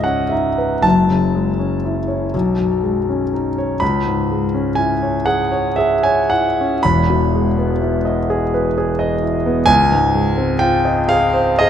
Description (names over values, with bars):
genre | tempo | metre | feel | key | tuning
classical, impressionist solo piano | 41 BPM (dotted quarters) | 6/8 | uneven beats, rubato | E major | A4 = 440 Hz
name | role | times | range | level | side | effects
warm concert grand piano | solo | 0.0-11.7 s | E1 to B5 | -14 LUFS | equal | none
room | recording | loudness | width
moderate concert hall reverb, RT60 2.0 s | none | -14 LUFS | side -9 dB against mid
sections
0.0-11.7 A section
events
none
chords
0.0 C#sus2; 0.8 F#m9; 2.3 B13; 3.8 C#m7; 6.8 Emaj7; 9.7 Dbmaj9